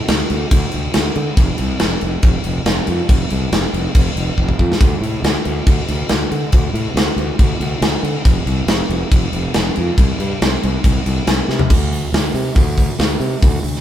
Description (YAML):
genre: classic rock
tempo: 140 BPM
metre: 4/4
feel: straight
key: D minor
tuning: A4 = 440 Hz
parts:
  - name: fuzz fingered electric bass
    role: bass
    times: 0.1-13.8 s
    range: F1 to D3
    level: -19 LUFS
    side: equal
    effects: overdrive
  - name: big rock drum kit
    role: drums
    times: 0.1-13.8 s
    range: crash cymbal, hi-hat, kick drum, snare drum, toms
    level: -15 LUFS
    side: equal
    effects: none
room: light reverb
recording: band playing live in one room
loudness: -14 LUFS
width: side -11 dB against mid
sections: 0.0-11.7 A section; 11.7-13.8 B section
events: drum fill 4.4-4.8, 11.5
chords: none